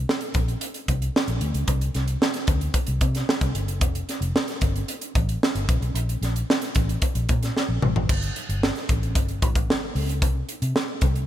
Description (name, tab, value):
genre	polished 1980s jazz-funk pop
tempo	112 BPM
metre	4/4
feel	straight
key	G minor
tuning	A4 = 440 Hz
part	vintage muted fingered electric bass	bass	0.0-11.3 s	F1 to C3	-25 LUFS	equal	none
part	crisp fusion drum kit	drums	0.1-11.3 s	crash cymbal, hi-hat, kick drum, snare drum, toms	-23 LUFS	equal	none
room	light reverb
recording	bright 1980s-style digital production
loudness	-22 LUFS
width	side -12 dB against mid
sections	0.0-8.1 A section; 8.1-11.3 B section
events	drum fill 7.6-8.1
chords	none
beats	0.08 0.61 1.15 | 1.68 2.22 2.75 3.29 | 3.82 4.35 4.89 5.42 | 5.96 6.49 7.02 7.56 | 8.09 8.62 9.16 9.69 | 10.22 10.76